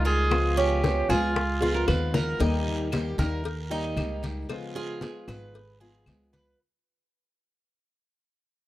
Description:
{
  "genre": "latin, Cuban son and guajira",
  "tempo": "115 BPM",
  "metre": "4/4",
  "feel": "straight",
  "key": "unclear",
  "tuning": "A4 = 442 Hz",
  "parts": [
    { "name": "warm trumpet", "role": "melody", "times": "0.0-1.9 s", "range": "F4 to Ab4", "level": "-28 LUFS", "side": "equal", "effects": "none" },
    { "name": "fingerpicked steel-string acoustic guitar", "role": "accompaniment", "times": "0.0-6.6 s", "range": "Db3 to G4", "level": "-31 LUFS", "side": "left 2 dB", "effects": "none" },
    { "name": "Cuban tres", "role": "arpeggios", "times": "0.0-6.6 s", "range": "Db4 to Cb5", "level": "-31 LUFS", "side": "right 4 dB", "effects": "none" },
    { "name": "upright bass", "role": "bass", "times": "0.0-6.5 s", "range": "Ab1 to Eb2", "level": "-28 LUFS", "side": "equal", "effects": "none" },
    { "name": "guiro", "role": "percussion", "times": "0.0-6.6 s", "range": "none", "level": "-42 LUFS", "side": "right 4 dB", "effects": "none" },
    { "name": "bongos and cowbell", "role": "percussion", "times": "0.1-6.6 s", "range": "none", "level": "-34 LUFS", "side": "left 5 dB", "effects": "none" },
    { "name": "claves", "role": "percussion", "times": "0.3-6.3 s", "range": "none", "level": "-40 LUFS", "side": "left 5 dB", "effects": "none" },
    { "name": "congas", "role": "percussion", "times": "0.3-6.6 s", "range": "none", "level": "-31 LUFS", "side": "left 1 dB", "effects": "none" },
    { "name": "nylon-string guitar", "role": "second line", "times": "1.6-5.9 s", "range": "Eb4 to Cb5", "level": "-35 LUFS", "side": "right 3 dB", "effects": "none" }
  ],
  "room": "little or no reverb",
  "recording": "dry, close 1970s-style studio recording",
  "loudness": "-24 LUFS",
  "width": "side -15 dB against mid",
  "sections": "0.0-2.4 A section; 2.4-6.6 B section",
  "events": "drum fill 1.9-2.4; fade-out 2.4-6.6",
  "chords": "0.3 Db7; 2.4 Eb; 4.5 Db7",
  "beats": "| 0.31 0.83 1.35 1.88 | 2.40 2.93 3.45 3.97 | 4.50 5.02 5.54 6.07"
}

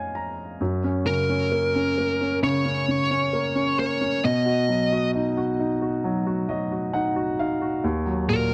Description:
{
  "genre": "pop ballad",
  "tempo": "66 BPM",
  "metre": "4/4",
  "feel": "straight",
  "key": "unclear",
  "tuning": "A4 = 440 Hz",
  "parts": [
    { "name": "clear baby grand piano", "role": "accompaniment", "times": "0.0-8.5 s", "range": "Eb2 to Bb5", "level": "-26 LUFS", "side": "equal", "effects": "none" },
    { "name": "woody fretless electric bass", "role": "bass", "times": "0.0-0.6 s", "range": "F2", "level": "-45 LUFS", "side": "equal", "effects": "none" },
    { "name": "fuzz lead guitar", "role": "melody", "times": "1.1-8.5 s", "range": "Bb4 to D#5", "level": "-27 LUFS", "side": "equal", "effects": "distortion" }
  ],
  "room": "light reverb, small room reverb",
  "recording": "dark, warm production",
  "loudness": "-24 LUFS",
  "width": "mono",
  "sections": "0.6-8.5 A section",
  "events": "grand piano fill 0.0-0.6, 6.0-7.8",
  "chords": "0.0 Db; 0.6 Gb; 4.2 B; 7.8 Ebm",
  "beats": "| 0.60 1.51 2.42 3.33 | 4.22 5.13 6.03 6.93 | 7.83"
}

